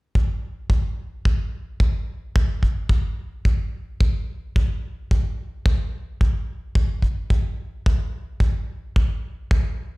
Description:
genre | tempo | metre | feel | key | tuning
nu-disco | 109 BPM | 4/4 | straight | none | none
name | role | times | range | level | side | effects
kick drum | drums | 0.2-9.6 s | none | -18 LUFS | equal | none
room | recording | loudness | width
little or no reverb | played on a big sound system in a bare room, large studio reverb | -21 LUFS | side -22 dB against mid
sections
0.2-10.0 A section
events
none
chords
none

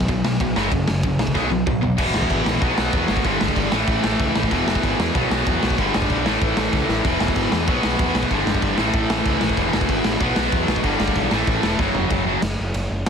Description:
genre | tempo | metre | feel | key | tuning
punk rock | 190 BPM | 4/4 | straight | unclear | A4 = 441 Hz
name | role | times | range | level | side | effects
distorted electric guitar | riff | 0.0-12.4 s | E2 to B3 | -20 LUFS | equal | overdrive
growling picked electric bass | bass | 0.0-13.0 s | E1 to E2 | -26 LUFS | equal | overdrive
raw garage drum kit | drums | 0.0-13.1 s | crash cymbal, kick drum, ride cymbal, snare drum, toms | -22 LUFS | equal | none
room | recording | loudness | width
light reverb | dense, heavily limited modern master | -18 LUFS | side -6 dB against mid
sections
0.0-2.0 A section; 2.0-12.1 B section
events
drum fill 1.4-2.0, 6.7-7.0, 11.8-12.1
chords
0.0 B5; 0.6 F#5; 1.4 B5; 2.0 E; 2.6 B5; 3.3 G5; 3.7 A; 4.5 E; 5.1 B5; 5.8 G; 6.3 A; 7.0 E; 7.7 B5; 8.3 G5; 8.8 A; 9.6 E; 10.2 B5; 10.8 G; 11.3 A5; 11.8 F#5

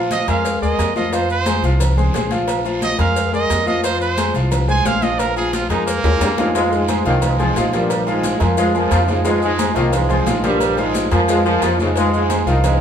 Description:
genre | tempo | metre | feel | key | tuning
latin, salsa | 177 BPM | 4/4 | straight | F minor | A4 = 441 Hz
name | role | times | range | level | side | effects
clear grand piano | accompaniment | 0.0-12.7 s | F3 to F5 | -20 LUFS | left 2 dB | none
upright bass | bass | 0.0-12.8 s | Bb1 to F2 | -20 LUFS | equal | none
bright trumpet | melody | 0.1-6.5 s | Bb3 to Ab5 | -21 LUFS | right 4 dB | none
congas | percussion | 0.1-12.8 s | none | -28 LUFS | left 2 dB | none
cowbell and bongos | percussion | 0.1-12.8 s | none | -30 LUFS | left 4 dB | none
guiro | percussion | 0.1-12.8 s | none | -35 LUFS | right 4 dB | none
maracas | percussion | 0.1-12.8 s | none | -34 LUFS | left 6 dB | none
timbales and agogo bells | percussion | 0.1-12.8 s | none | -28 LUFS | right 7 dB | none
bright trombone section | melody | 6.1-12.8 s | G2 to F4 | -21 LUFS | right 2 dB | none
bright trombone section | second line | 6.5-12.6 s | Db3 to Ab3 | -22 LUFS | left 2 dB | none
room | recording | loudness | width
wet large studio reverb, RT60 1.3 s | band playing live in one room | -15 LUFS | side -8 dB against mid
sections
0.0-6.5 A section; 6.5-12.8 B section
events
trumpet solo 0.0-6.5; drum fill 6.0-6.5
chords
0.0 Bb5; 1.1 Fm; 2.5 Bb5; 3.8 Fm; 5.2 Bb5; 6.5 Fm; 7.9 Bb7(no3); 9.3 Fm; 10.6 Bb7(no3); 12.0 Fm

